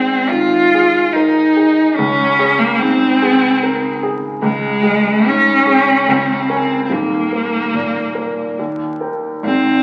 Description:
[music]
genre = classical, romantic duo for cello and grand piano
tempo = 72 BPM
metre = 3/4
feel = rubato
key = unclear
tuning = A4 = 440 Hz
[part]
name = rich cello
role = melody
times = 0.0-9.8 s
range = Ab3 to F4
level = -16 LUFS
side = equal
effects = none
[part]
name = warm baby grand piano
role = accompaniment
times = 0.0-9.8 s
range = Eb1 to Ab5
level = -22 LUFS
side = equal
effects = none
[sound]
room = wet recital hall reverb, RT60 1.4 s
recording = very old 78 rpm record, vinyl crackle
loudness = -15 LUFS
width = mono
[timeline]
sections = 0.0-9.8 A section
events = none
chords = 0.0 Ab5; 2.0 Db5; 6.9 Eb5; 8.6 Eb

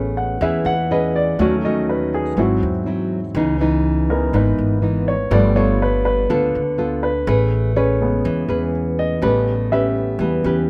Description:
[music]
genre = bossa nova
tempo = 123 BPM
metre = 4/4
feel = straight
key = unclear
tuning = A4 = 438 Hz
[part]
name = nylon-string guitar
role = accompaniment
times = 0.0-10.7 s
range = G#2 to B4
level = -23 LUFS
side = equal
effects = none
[part]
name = warm baby grand piano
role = accompaniment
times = 0.0-10.7 s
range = C#3 to F#5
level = -23 LUFS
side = equal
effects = none
[part]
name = upright bass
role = bass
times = 0.0-10.7 s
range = G1 to E2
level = -24 LUFS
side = equal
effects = none
[sound]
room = light reverb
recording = none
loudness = -19 LUFS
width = mono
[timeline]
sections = 0.0-10.7 A section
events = grand piano solo 0.0-10.7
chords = 0.0 Amaj9; 1.4 D#m7b5; 2.4 G#aug7; 3.4 C#m9; 5.3 G9; 7.3 Amaj9; 9.2 A9

